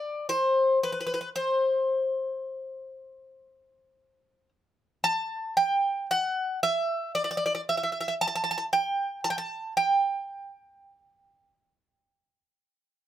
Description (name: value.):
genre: greek folk.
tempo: 115 BPM (eighths).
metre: 9/8.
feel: straight.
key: G major.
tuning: A4 = 445 Hz.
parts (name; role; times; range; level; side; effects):
Greek bouzouki; solo; 0.0-13.1 s; B4 to A5; -25 LUFS; equal; none.
room: moderate small room reverb, RT60 0.5 s.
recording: none.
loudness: -25 LUFS.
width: side -11 dB against mid.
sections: 0.0-13.1 A section.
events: speeding up 0.0-13.1.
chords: none.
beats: | 0.28 0.81 1.34 1.88 2.41 2.94 3.47 3.99 4.52 | 5.05 5.57 6.10 6.62 7.14 7.66 8.18 8.70 9.22 | 9.74 10.25 10.77 11.28 11.79 12.30 12.81.